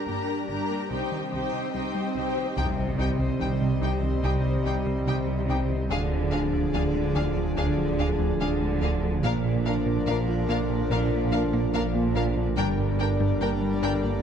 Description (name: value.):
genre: cinematic, hybrid orchestral and electronic film score.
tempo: 72 BPM.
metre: 4/4.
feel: straight.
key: C minor.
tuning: A4 = 440 Hz.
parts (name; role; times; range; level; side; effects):
warm symphonic violin section; second line; 0.0-13.9 s; G4 to Bb5; -36 LUFS; left 3 dB; none.
warm symphonic viola section; accompaniment; 0.0-13.9 s; D4 to G4; -37 LUFS; equal; none.
airy breathy pad; sustained chords; 0.0-14.2 s; F3 to Eb5; -32 LUFS; left 1 dB; chorus.
swell and impact; sound effects; 1.5-5.9 s; none; -36 LUFS; left 1 dB; none.
glassy wavetable pluck; arpeggios; 0.1-14.2 s; C3 to Bb4; -35 LUFS; left 1 dB; none.
warm symphonic cello section; bass; 0.1-14.1 s; G2 to D3; -32 LUFS; right 2 dB; none.
warm symphonic double bass section; bass; 0.1-14.1 s; G1 to D2; -31 LUFS; right 3 dB; none.
warm symphonic violin section; melody; 2.6-13.9 s; F5 to G5; -37 LUFS; left 5 dB; none.
clear trombone section; sustained chords; 2.6-14.2 s; D3 to G3; -34 LUFS; right 5 dB; none.
mellow French horn section; sustained chords; 2.6-14.2 s; C4 to Bb4; -34 LUFS; left 6 dB; none.
round analog bass; riff; 2.6-14.2 s; C2 to Bb3; -31 LUFS; right 1 dB; none.
dark detuned saw bass; bass; 2.6-14.2 s; D1 to C2; -32 LUFS; left 1 dB; none.
room: moderate scoring stage reverb, RT60 1.6 s.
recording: dark, warm production.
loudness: -23 LUFS.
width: side -8 dB against mid.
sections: 0.0-2.6 A section; 2.6-14.2 A section.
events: swell 1.5-2.6; impact 2.6-5.9.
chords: 0.0 Gm; 0.9 Cm; 5.9 Ddim; 9.2 Bb; 12.6 Gm.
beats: 0.08 0.91 1.74 | 2.58 3.41 4.24 5.08 | 5.91 6.74 7.58 8.41 | 9.24 10.08 10.91 11.74 | 12.58 13.41.